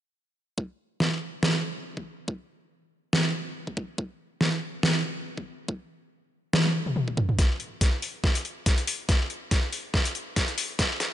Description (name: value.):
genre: heavy wobble dubstep.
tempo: 141 BPM.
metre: 4/4.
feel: swing 55% on 16ths, half-time.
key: none.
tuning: none.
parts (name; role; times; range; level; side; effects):
electronic kick drum; drums; 0.6-10.9 s; none; -25 LUFS; equal; overdrive, high-pass filter on kick.
dubstep drum kit; drums; 1.0-11.1 s; hi-hat, snare drum, toms; -26 LUFS; equal; overdrive, high-pass filter on snare, high-pass filter on toms, high-pass filter on hats.
room: moderate lush hall reverb, RT60 2.1 s.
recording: high-pass filter, nothing above 10.7 kHz.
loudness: -25 LUFS.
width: side -12 dB against mid.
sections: 0.6-7.4 A section; 7.4-11.1 B section.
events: drum fill 6.5-7.4, 7.4-11.1; build-up 7.4-11.1; filter sweep 7.4-11.1.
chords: none.